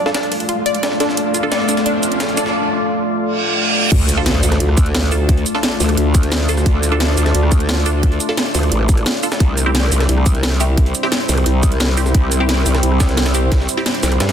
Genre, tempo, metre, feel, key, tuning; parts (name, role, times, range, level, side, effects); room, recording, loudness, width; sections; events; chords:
dark technical drum and bass; 175 BPM; 4/4; straight; D minor; A4 = 439 Hz
deep dark ambient pad; sustained chords; 0.0-14.3 s; G3 to F5; -21 LUFS; left 1 dB; chorus, built-in reverb, sidechain pumping
analog pluck; arpeggios; 0.0-2.5 s; D4 to D5; -21 LUFS; left 1 dB; chorus, phaser, sidechain pumping, digital delay
riser, reverse cymbal and impact; sound effects; 0.0-5.3, 14.2-14.3 s; -22 LUFS; right 1 dB
filtered dub chord stab; stabs; 0.1-13.8 s; C4 to A4; -24 LUFS; right 1 dB; phaser, digital delay
breakbeat sampler-style drum kit; drums; 0.1-14.3 s; hi-hat, snare drum; -26 LUFS; equal; high-pass filter on hats, high-pass filter on snare
drum and bass drum kit; drums; 0.1-14.3 s; cabasa, crash cymbal, hi-hat, rim click, snare drum; -21 LUFS; right 1 dB; overdrive, high-pass filter on hats, high-pass filter on perc, high-pass filter on cymbals, high-pass filter on snare
growl bass; bass; 3.9-14.3 s; A1 to G2; -16 LUFS; equal; chorus, tube saturation, sidechain pumping
electronic kick drum; drums; 3.9-13.6 s; -14 LUFS; equal; overdrive
light reverb, digital ambience; dense, heavily limited modern master; -13 LUFS; side -8 dB against mid
0.0-3.9 A section; 3.9-14.3 B section
build-up 0.0-3.9; riser 0.0-2.5; reverse cymbal 3.3-3.9; drop 3.9-14.3; impact 3.9-5.3
0.0 Dm; 9.4 C